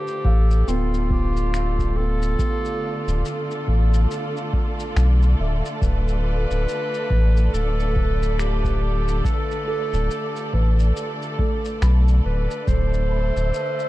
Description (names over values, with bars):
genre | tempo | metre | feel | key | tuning
ambient dub | 70 BPM | 4/4 | swing 60% on 16ths | D dorian | A4 = 440 Hz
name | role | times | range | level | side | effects
clear clarinet | melody | 0.0-13.9 s | F4 to C5 | -28 LUFS | equal | tape echo
clear symphonic string section | sustained chords | 0.0-13.9 s | D3 to D5 | -30 LUFS | right 1 dB | none
felt-muted upright piano | arpeggios | 0.0-13.9 s | A3 to B5 | -33 LUFS | right 2 dB | tape echo
electronic shaker and finger snaps | drums | 0.1-13.9 s | none | -38 LUFS | left 2 dB | dub echo
soft dub sub bass | bass | 0.2-13.5 s | D1 to B1 | -19 LUFS | equal | tube saturation
electronic kick drum | drums | 0.2-12.9 s | none | -24 LUFS | equal | overdrive
wind-like tuned noise texture | texture | 12.9-13.9 s | E5 | -33 LUFS | right 1 dB | built-in reverb
room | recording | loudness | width
studio reverb | echo-heavy mix | -19 LUFS | side -16 dB against mid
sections
0.0-13.9 A section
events
none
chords
0.0 Dm69; 12.7 Amadd9/D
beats
0.68 1.53 | 2.39 3.25 4.11 4.96 | 5.82 6.68 7.53 8.39 | 9.25 10.11 10.96 11.82 | 12.68 13.53